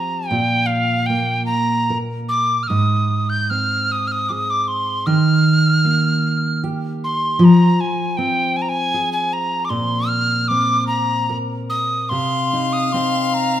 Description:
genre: celtic folk, Celtic slow air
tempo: 51 BPM (dotted quarters)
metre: 6/8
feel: rubato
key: C minor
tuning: A4 = 440 Hz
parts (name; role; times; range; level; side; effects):
- mellow tin whistle; melody; 0.0-13.6 s; F5 to G6; -19 LUFS; equal; none
- fingerpicked steel-string acoustic guitar; accompaniment; 0.0-13.6 s; Ab2 to Bb4; -19 LUFS; equal; none
- bright fiddle; second line; 12.1-13.6 s; F5; -22 LUFS; left 6 dB; none
room: moderate recital hall reverb, RT60 1.8 s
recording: minimal, uncompressed stereo recording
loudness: -16 LUFS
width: side -11 dB against mid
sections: 0.0-12.1 A section; 12.1-13.6 B section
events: none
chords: 0.3 N.C.; 2.7 Ab; 5.1 Ebadd9; 7.4 Fm; 9.7 Bbsus2; 12.1 Cm

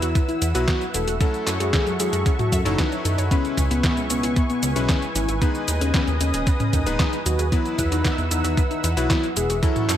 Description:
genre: italo disco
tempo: 114 BPM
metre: 4/4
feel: straight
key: unclear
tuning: A4 = 438 Hz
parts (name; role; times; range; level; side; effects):
- soft octave-layered synth lead; melody; 0.0-9.9 s; B3 to A4; -26 LUFS; left 2 dB; chorus, tape echo
- warm analog pad; sustained chords; 0.0-10.0 s; A4 to E6; -30 LUFS; right 1 dB; chorus, vintage 12-bit sampler grit
- analog pluck; arpeggios; 0.0-10.0 s; B3 to E5; -33 LUFS; right 3 dB; chorus, ping-pong delay
- bright electric grand piano; stabs; 0.0-10.0 s; F#3 to B4; -31 LUFS; left 4 dB; none
- chorused synth bass; bass; 0.0-10.0 s; D#1 to F#2; -24 LUFS; equal; tube saturation
- detuned 8-bit digital drum machine; drums; 0.0-10.0 s; cabasa, handclaps, hi-hat, snare drum, toms; -27 LUFS; left 1 dB; none
- electronic kick drum; drums; 0.2-9.7 s; none; -22 LUFS; equal; overdrive
room: light reverb, digital ambience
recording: none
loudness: -19 LUFS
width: side -11 dB against mid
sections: 0.0-10.0 A section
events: none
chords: 0.0 Esus2; 1.2 F#m7; 3.3 C#m7; 5.4 G#m/D#; 7.5 Esus2

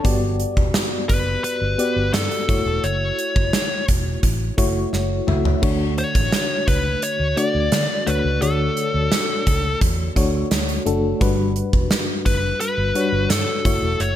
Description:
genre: 1980s-style pop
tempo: 86 BPM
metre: 4/4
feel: straight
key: D major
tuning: A4 = 440 Hz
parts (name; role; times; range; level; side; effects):
- FM electric piano with tremolo; accompaniment; 0.0-14.2 s; G2 to E5; -24 LUFS; left 2 dB; none
- vintage muted fingered electric bass; bass; 0.0-14.2 s; E1 to D3; -24 LUFS; equal; none
- gated 80s drum kit; drums; 0.0-14.2 s; crash cymbal, hi-hat, kick drum, snare drum, toms; -21 LUFS; right 1 dB; gated reverb
- fuzz lead guitar; melody; 1.1-14.2 s; A4 to D5; -23 LUFS; left 2 dB; distortion, digital delay
room: light reverb, small room ambience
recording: none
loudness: -18 LUFS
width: side -11 dB against mid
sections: 0.0-14.2 A section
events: drum fill 4.9-5.6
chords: 0.0 Gmaj7; 2.5 F#m7; 5.6 Dmaj7; 11.2 Gmaj7; 13.7 F#m7

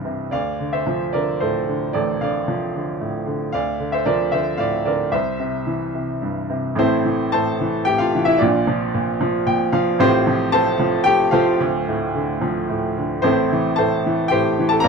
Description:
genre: classical, lyrical solo piano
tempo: 112 BPM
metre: 3/4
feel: rubato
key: D minor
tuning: A4 = 440 Hz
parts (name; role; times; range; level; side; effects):
- bright baby grand piano; solo; 0.0-14.9 s; D1 to Bb5; -18 LUFS; equal; none
room: light reverb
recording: dark, warm production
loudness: -18 LUFS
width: side -5 dB against mid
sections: 0.0-6.8 A section; 6.8-14.9 B section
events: grand piano fill 9.2-10.0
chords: 0.3 Dm7; 3.5 Bbmaj7/D; 5.1 C; 6.8 Am; 8.4 Bb; 10.0 Fadd9/A; 11.6 Dm7; 13.2 Am

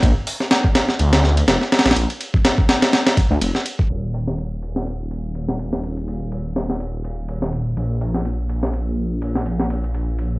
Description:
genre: breakbeat, breaks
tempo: 124 BPM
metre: 4/4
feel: swing 56% on 16ths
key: unclear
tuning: A4 = 437 Hz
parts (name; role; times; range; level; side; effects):
- phased detuned saw bass; bass; 0.0-10.4 s; Eb1 to D2; -21 LUFS; equal; phaser
- breakbeat sampler-style drum kit; drums; 0.0-10.3 s; hi-hat, kick drum, ride cymbal, snare drum; -18 LUFS; equal; low-pass filter on kick, studio reverb, low-pass filter on cymbals, low-pass filter on hats, low-pass filter on snare
room: little or no reverb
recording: home recording on cassette, low-pass filter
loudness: -18 LUFS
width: side -22 dB against mid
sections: 0.0-3.9 A section; 3.9-10.4 B section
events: filter sweep 3.9-10.4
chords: none

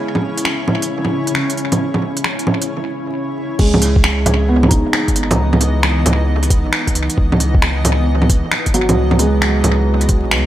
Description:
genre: future garage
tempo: 134 BPM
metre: 4/4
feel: swing 65% on 16ths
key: C# minor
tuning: A4 = 440 Hz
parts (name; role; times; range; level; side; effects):
- felt-muted upright piano; accompaniment; 0.0-10.5 s; F#3 to D#4; -21 LUFS; right 1 dB; sidechain pumping, dub echo
- granular cloud pad; sustained chords; 0.0-10.5 s; C#3 to D#5; -22 LUFS; equal; built-in reverb, sidechain pumping
- garage drum kit; drums; 0.1-10.4 s; bongos, crash cymbal, finger snaps, hi-hat; -18 LUFS; right 1 dB; tape echo
- warm sub bass; bass; 3.6-10.5 s; G#1 to C#2; -17 LUFS; equal; sidechain pumping
- electronic kick drum; drums; 3.6-10.2 s; none; -14 LUFS; equal; none
room: light reverb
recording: echo-heavy mix, vinyl crackle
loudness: -13 LUFS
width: side -13 dB against mid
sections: 0.0-3.6 A section; 3.6-10.5 B section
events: break 2.7-3.6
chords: 0.0 C#m7; 3.6 C#m9

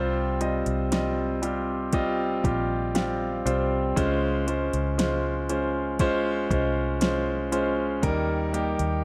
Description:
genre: pop ballad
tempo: 59 BPM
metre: 4/4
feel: straight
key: unclear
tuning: A4 = 440 Hz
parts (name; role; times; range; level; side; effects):
- clear concert grand piano; accompaniment; 0.0-9.0 s; C3 to G5; -28 LUFS; equal; none
- vintage muted fingered electric bass; bass; 0.0-9.0 s; Bb1 to Eb2; -33 LUFS; equal; none
- smooth R&B drum kit; drums; 0.4-9.0 s; hi-hat, kick drum, snare drum; -30 LUFS; equal; overdrive
room: moderate concert hall reverb, RT60 2.1 s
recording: none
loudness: -26 LUFS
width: mono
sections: 0.0-9.0 A section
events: grand piano fill 1.9-4.0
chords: 0.0 Csus4; 4.0 Dbmaj7; 8.0 Eb

